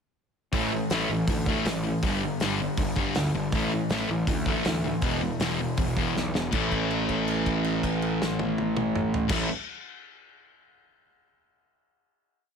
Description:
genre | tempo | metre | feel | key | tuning
punk rock | 160 BPM | 4/4 | straight | unclear | A4 = 440 Hz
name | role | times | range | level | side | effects
sludgy distorted guitar | riff | 0.5-9.5 s | E2 to A3 | -29 LUFS | left 11 dB | overdrive
sludgy distorted guitar | riff | 0.5-9.5 s | E2 to A3 | -30 LUFS | right 12 dB | overdrive
fuzz picked electric bass | bass | 0.5-9.5 s | E1 to D2 | -32 LUFS | equal | overdrive
loose indie drum kit | drums | 0.5-9.4 s | crash cymbal, hi-hat, kick drum, snare drum, toms | -31 LUFS | equal | none
room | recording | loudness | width
light reverb | none | -24 LUFS | side -6 dB against mid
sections
0.5-6.5 verse; 6.5-9.5 final chord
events
drum fill 6.2-6.5; held note 6.5-9.3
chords
0.5 A5; 2.0 G5; 3.5 A5; 5.0 E5; 6.5 A5

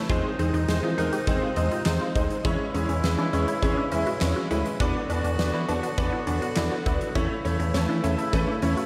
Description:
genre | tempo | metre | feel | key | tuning
synth-pop | 102 BPM | 4/4 | straight | unclear | A4 = 441 Hz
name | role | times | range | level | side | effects
clear concert grand piano | accompaniment | 0.0-8.8 s | G#3 to E5 | -31 LUFS | equal | ensemble chorus
mellow woodwind section | sustained chords | 0.0-8.9 s | B#2 to F#4 | -34 LUFS | equal | none
resonant blip pluck | arpeggios | 0.0-8.9 s | C#4 to G4 | -35 LUFS | equal | chorus, phaser, tape echo
fat analog bass | bass | 0.1-8.7 s | D2 to E3 | -30 LUFS | equal | none
huge arena drum kit | drums | 0.1-8.9 s | handclaps, hi-hat, kick drum, snare drum | -32 LUFS | equal | none
room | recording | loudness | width
wet lush hall reverb, RT60 1.9 s, small room ambience | dreamy mix soaked in reverb | -25 LUFS | mono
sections
0.0-8.9 A section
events
none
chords
0.1 G#/E; 2.4 C#m/E; 4.8 Bm/E; 7.2 A/E

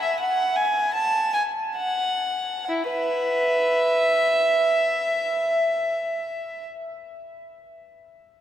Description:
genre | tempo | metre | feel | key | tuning
classical, baroque-style suite movement for unaccompanied violin | 63-85 BPM | 3/4 | rubato | E major | A4 = 440 Hz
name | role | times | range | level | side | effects
rich violin | solo | 0.0-6.6 s | E4 to A5 | -21 LUFS | equal | none
room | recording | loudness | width
wet cathedral reverb, RT60 5.3 s | recorded in a church or concert hall | -20 LUFS | side -11 dB against mid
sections
0.0-2.7 A section; 2.7-8.1 B section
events
slowing down 0.0-2.7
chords
none

